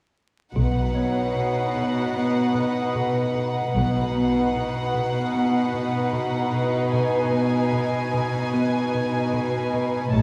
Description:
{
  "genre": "cinematic",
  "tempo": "75 BPM",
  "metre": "4/4",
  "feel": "straight",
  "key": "unclear",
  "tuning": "A4 = 440 Hz",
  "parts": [
    { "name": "warm symphonic violin section", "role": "melody", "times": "0.5-10.2 s", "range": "F#5 to A5", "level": "-34 LUFS", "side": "equal", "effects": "none" },
    { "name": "warm symphonic violin section", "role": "second line", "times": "0.5-10.2 s", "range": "D#4 to C#5", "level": "-32 LUFS", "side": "equal", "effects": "none" },
    { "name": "rich symphonic double bass section", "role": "bass", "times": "0.5-4.5, 10.1-10.2 s", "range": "A1 to B1", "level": "-29 LUFS", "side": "equal", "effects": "none" },
    { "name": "warbly tape-like pad", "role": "sustained chords", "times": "1.3-10.2 s", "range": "B4 to A5", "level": "-32 LUFS", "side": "equal", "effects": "chorus, built-in reverb" },
    { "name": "folk marimba with medium hard mallets", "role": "riff", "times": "0.6-10.2 s", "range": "A2 to B3", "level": "-28 LUFS", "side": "equal", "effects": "none" },
    { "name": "rich symphonic cello section", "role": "bass", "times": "0.6-10.2 s", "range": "A2 to B2", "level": "-29 LUFS", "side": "equal", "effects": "none" },
    { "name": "concert harp", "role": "texture", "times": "0.9-10.2 s", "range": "B4 to C#5", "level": "-38 LUFS", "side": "equal", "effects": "none" }
  ],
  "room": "wet scoring stage reverb, RT60 1.8 s",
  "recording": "heard from further back in the room, vinyl crackle",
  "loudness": "-23 LUFS",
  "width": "mono",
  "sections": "0.5-10.2 A section",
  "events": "none",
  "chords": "0.5 B; 6.9 G#m/B"
}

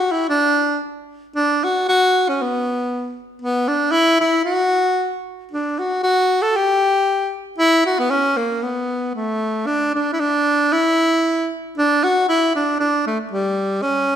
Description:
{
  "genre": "alpine folk",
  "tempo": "115 BPM",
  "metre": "2/4",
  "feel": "rubato",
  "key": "B minor, D major from 9.7 s",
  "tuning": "A4 = 439 Hz",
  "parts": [
    { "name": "warm tenor saxophone", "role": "solo", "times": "0.0-14.2 s", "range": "G3 to A4", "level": "-16 LUFS", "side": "equal", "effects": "none" }
  ],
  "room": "moderate recital hall reverb, RT60 1.4 s",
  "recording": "none",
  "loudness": "-16 LUFS",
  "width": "side -9 dB against mid",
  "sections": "0.0-1.4 A section; 1.4-9.7 B section; 9.7-14.2 A section",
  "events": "none",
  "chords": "none"
}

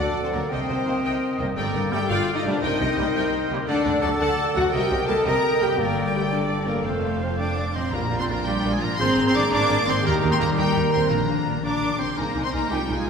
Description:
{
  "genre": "cinematic, heroic adventure film score",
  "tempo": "113 BPM (dotted quarters)",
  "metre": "6/8",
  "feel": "straight",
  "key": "G minor, Bb mixolydian from 7.9 s",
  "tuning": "A4 = 440 Hz",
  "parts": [
    { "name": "warm symphonic violin section", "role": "melody", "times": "0.0-13.1 s", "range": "A4 to D6", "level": "-30 LUFS", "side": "left 3 dB", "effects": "none" },
    { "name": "bright silver concert flute", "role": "second line", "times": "0.0-13.1 s", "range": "D5 to Bb5", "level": "-33 LUFS", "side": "left 2 dB", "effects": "none" },
    { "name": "rich symphonic violin section", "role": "second line", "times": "0.0-13.1 s", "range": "F4 to Bb5", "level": "-34 LUFS", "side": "left 1 dB", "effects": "none" },
    { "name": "warm clarinet", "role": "second line", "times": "0.0-13.1 s", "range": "D4 to Bb4", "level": "-32 LUFS", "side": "equal", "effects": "none" },
    { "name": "warm oboe", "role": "second line", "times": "0.0-13.1 s", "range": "G4 to Eb5", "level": "-32 LUFS", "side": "right 1 dB", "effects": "none" },
    { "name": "clear studio viola section", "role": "accompaniment", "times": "0.0-13.1 s", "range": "Bb3 to G5", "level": "-33 LUFS", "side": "right 1 dB", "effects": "none" },
    { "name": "warm French horn section", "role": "sustained chords", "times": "0.0-13.1 s", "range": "A3 to Bb4", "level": "-26 LUFS", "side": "left 1 dB", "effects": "none" },
    { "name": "concert harp", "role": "arpeggios", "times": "0.0-13.1 s", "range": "F2 to Bb4", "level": "-32 LUFS", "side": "left 4 dB", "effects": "none" },
    { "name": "rich symphonic cello section", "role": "bass", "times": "0.0-13.1 s", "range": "F2 to D4", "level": "-29 LUFS", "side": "right 1 dB", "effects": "none" },
    { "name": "rich symphonic double bass section", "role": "bass", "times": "0.0-13.1 s", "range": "F1 to Eb2", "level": "-30 LUFS", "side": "right 2 dB", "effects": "none" },
    { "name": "clear trombone section", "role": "sustained chords", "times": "0.3-13.1 s", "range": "D3 to D4", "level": "-33 LUFS", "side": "right 3 dB", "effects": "none" },
    { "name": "timpani", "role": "percussion", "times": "5.8-8.4, 11.1-11.6 s", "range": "G2 to Bb2", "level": "-33 LUFS", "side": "left 1 dB", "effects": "none" }
  ],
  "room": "wet scoring stage reverb, RT60 2.2 s",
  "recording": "recorded in a church or concert hall",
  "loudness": "-20 LUFS",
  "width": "side -6 dB against mid",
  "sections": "0.0-7.9 A section; 7.9-13.1 B section",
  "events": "none",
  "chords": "0.0 D; 0.5 Cm7; 1.6 Gmadd9; 2.6 Cm7; 3.7 D; 4.7 Cm7; 5.8 Gmadd9; 6.9 F; 7.9 Bb; 9.0 Abadd9; 10.0 Eb; 11.1 Bb; 12.2 Abadd9/C"
}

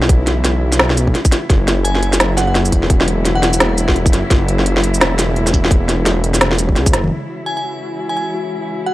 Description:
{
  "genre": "half-time drum and bass",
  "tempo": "171 BPM",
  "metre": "4/4",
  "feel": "swing 59% on 16ths, half-time",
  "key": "C# dorian",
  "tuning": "A4 = 441 Hz",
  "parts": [
    { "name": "warm studio cello section", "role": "sustained chords", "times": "0.0-8.9 s", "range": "C#3 to E4", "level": "-23 LUFS", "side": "equal", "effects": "sidechain pumping" },
    { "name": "dark detuned saw bass", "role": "bass", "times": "0.0-7.1 s", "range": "E1 to C#2", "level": "-16 LUFS", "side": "equal", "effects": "none" },
    { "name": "organic electronic drum kit", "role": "drums", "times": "0.0-7.2 s", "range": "hi-hat, shaker, snare drum, toms", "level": "-16 LUFS", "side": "equal", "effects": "low-pass filter on snare, low-pass filter on hats, low-pass filter on perc, low-pass filter on toms, low-pass filter on room" },
    { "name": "electronic kick drum", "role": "drums", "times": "0.1-6.9 s", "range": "none", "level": "-14 LUFS", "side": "equal", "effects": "none" },
    { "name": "glassy synth bell", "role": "melody", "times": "1.8-3.8, 7.5-8.9 s", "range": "F#5 to G#5", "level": "-23 LUFS", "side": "equal", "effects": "chorus, phaser, analog delay" },
    { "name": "pulsing gated texture", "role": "texture", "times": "7.3-8.9 s", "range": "F#4", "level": "-26 LUFS", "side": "left 5 dB", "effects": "chorus, built-in reverb" }
  ],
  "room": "digital ambience",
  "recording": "dry, gritty hardware recording",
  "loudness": "-13 LUFS",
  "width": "side -16 dB against mid",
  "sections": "0.0-7.1 A section; 7.1-8.9 B section",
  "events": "drop 0.0-7.1; drum fill 6.9",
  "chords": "0.0 C#m; 1.5 F#7; 7.1 C#m"
}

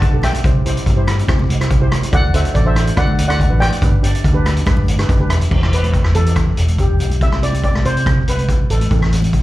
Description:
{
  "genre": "calypso",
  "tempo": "142 BPM",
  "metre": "4/4",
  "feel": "straight",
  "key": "unclear",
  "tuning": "A4 = 441 Hz",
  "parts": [
    { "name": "steel pan", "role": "melody", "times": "0.0-9.4 s", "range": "G4 to A5", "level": "-22 LUFS", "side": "equal", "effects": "slapback echo, ping-pong delay" },
    { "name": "steel pan", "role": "accompaniment", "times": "0.0-9.3 s", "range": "B3 to E5", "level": "-26 LUFS", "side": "right 1 dB", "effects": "slapback echo" },
    { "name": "fingered electric bass", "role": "bass", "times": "0.0-9.3 s", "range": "E1 to D3", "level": "-16 LUFS", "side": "equal", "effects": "none" },
    { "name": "street-band drum kit", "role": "drums", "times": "0.0-9.4 s", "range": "crash cymbal, hi-hat, kick drum, rim click", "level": "-16 LUFS", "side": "equal", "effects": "none" },
    { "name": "congas", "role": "percussion", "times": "0.2-9.3 s", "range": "none", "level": "-29 LUFS", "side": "left 2 dB", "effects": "none" }
  ],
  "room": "little or no reverb",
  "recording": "live gig heard through the venue's PA, club reverb",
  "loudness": "-13 LUFS",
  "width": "side -16 dB against mid",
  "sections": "0.0-5.5 A section; 5.5-9.4 B section",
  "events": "steel pan fill 4.9-5.5; drum fill 5.2-5.5; steel pan solo 5.5-9.4",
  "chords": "0.4 C; 2.1 D; 3.8 G; 5.5 Em; 7.2 C; 8.9 Am"
}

